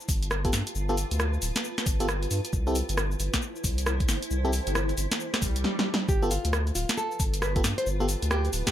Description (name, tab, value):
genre	UK garage, two-step garage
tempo	135 BPM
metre	4/4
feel	swing 62% on 16ths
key	unclear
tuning	A4 = 440 Hz
part	punchy analog drum machine	drums	0.0-8.7 s	hi-hat, rim click, shaker, snare drum	-29 LUFS	equal	none
part	granular cloud pad	texture	0.0-8.7 s	E4 to A5	-37 LUFS	right 1 dB	built-in reverb, sidechain pumping
part	saturated sub bass	bass	0.1-8.6 s	D1 to G2	-29 LUFS	equal	sidechain pumping
part	electronic kick drum	drums	0.1-8.7 s	none	-27 LUFS	equal	none
part	FM electric piano	stabs	0.4-8.1 s	B3 to A4	-32 LUFS	equal	chorus, tape echo
part	swell	sound effects	5.4-6.1 s	none	-35 LUFS	equal	none
part	nylon-string guitar	melody	6.1-8.7 s	F4 to C5	-32 LUFS	right 1 dB	dub echo
room	digital ambience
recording	none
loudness	-25 LUFS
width	side -11 dB against mid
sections	0.0-6.1 A section; 6.1-8.7 B section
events	swell 5.4-6.1; drum fill 5.6-6.1; drop 6.1-8.7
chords	0.0 G9; 2.5 C6; 6.1 G9